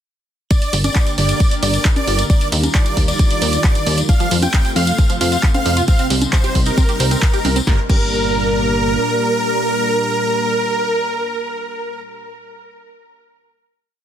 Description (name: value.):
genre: uplifting trance.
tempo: 134 BPM.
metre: 4/4.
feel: straight.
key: G minor.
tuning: A4 = 440 Hz.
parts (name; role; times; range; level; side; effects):
dense compressed supersaw; melody; 0.5-12.0 s; Bb4 to G5; -20 LUFS; right 1 dB; sidechain pumping, dub echo.
lush unison pad; sustained chords; 0.5-12.0 s; Bb2 to C5; -24 LUFS; equal; chorus, sidechain pumping.
electronic kick drum; drums; 0.5-8.0 s; none; -15 LUFS; equal; none.
punchy analog drum machine; drums; 0.5-8.0 s; congas, crash cymbal, handclaps, hi-hat, snare drum; -22 LUFS; right 1 dB; sidechain pumping on hats, sidechain pumping on perc, sidechain pumping on cymbals.
tambourine; percussion; 0.5-7.7 s; none; -28 LUFS; left 6 dB; none.
plucky analog bass; bass; 0.7-9.0 s; G1 to F2; -19 LUFS; equal; sidechain pumping.
tight sequenced synth; arpeggios; 4.1-8.0 s; F2 to C5; -25 LUFS; right 2 dB; chorus, phaser, sidechain pumping, dub echo.
room: little or no reverb.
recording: dense, heavily limited modern master.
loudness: -14 LUFS.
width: side -10 dB against mid.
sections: 0.5-7.7 drop; 7.7-11.3 final chord.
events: drop 0.5-7.7.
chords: 0.5 Gm; 2.3 Ebadd9; 4.1 F; 5.9 Cm; 7.7 Gm.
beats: | 0.51 0.95 1.40 1.85 | 2.30 2.75 3.19 3.64 | 4.09 4.54 4.98 5.43 | 5.88 6.33 6.78 7.22 | 7.67 8.12 8.57 9.01 | 9.46 9.91 10.36 10.80.